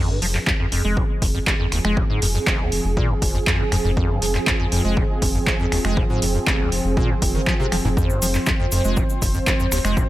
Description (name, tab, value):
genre	acid house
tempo	120 BPM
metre	4/4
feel	straight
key	F minor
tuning	A4 = 445 Hz
part	warm analog pad	sustained chords	0.0-10.1 s	F3 to C5	-26 LUFS	right 1 dB	chorus, sidechain pumping
part	liquid acid bass	riff	0.0-10.0 s	F1 to Ab3	-24 LUFS	equal	tube saturation, wide subtle chorus, cassette tape, analog delay
part	round analog bass	bass	0.2-10.0 s	F1	-24 LUFS	equal	sidechain pumping
part	punchy analog drum machine	drums	0.2-9.9 s	finger snaps, handclaps, hi-hat	-24 LUFS	equal	overdrive
part	electronic kick drum	drums	0.5-10.1 s	none	-22 LUFS	equal	overdrive
part	cabasa	percussion	8.0-10.1 s	none	-29 LUFS	left 4 dB	none
room	digital ambience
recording	none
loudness	-18 LUFS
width	side -15 dB against mid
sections	0.0-10.1 A section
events	none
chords	0.0 Fm